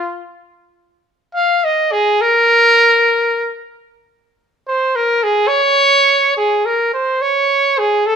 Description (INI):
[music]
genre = mexican folk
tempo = 72 BPM (dotted quarters)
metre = 6/8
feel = straight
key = unclear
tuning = A4 = 441 Hz
[part]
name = clear trumpet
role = solo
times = 0.0-8.2 s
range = F4 to F5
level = -12 LUFS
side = equal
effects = none
[sound]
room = light reverb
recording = minimal, uncompressed stereo recording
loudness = -11 LUFS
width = side -7 dB against mid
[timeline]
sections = 0.0-7.2 A section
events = none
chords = none